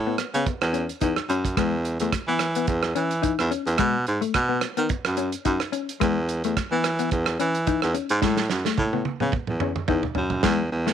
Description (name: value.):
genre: highlife guitar band.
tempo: 108 BPM.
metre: 4/4.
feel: swing 55% on 16ths.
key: E major.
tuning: A4 = 440 Hz.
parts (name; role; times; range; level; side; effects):
warm baritone saxophone; bass; 0.0-10.9 s; E2 to E3; -24 LUFS; right 1 dB; none.
mellow electric guitar; accompaniment; 0.1-10.9 s; G#3 to D#4; -28 LUFS; left 11 dB; none.
warm soul drum kit; drums; 0.2-10.9 s; hi-hat, kick drum, rim click, snare drum, toms; -27 LUFS; right 5 dB; none.
room: light reverb, studio ambience.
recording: 1960s-style stereo.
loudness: -22 LUFS.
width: side -9 dB against mid.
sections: 0.0-10.4 A section.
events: drum fill 8.2-10.4.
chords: 0.0 A; 1.6 E5; 3.8 B; 6.0 E; 8.2 A.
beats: 0.47 1.02 | 1.58 2.13 2.69 3.24 | 3.79 4.35 4.90 5.46 | 6.01 6.57 7.12 7.67 | 8.23 8.78 9.34 9.89 | 10.44.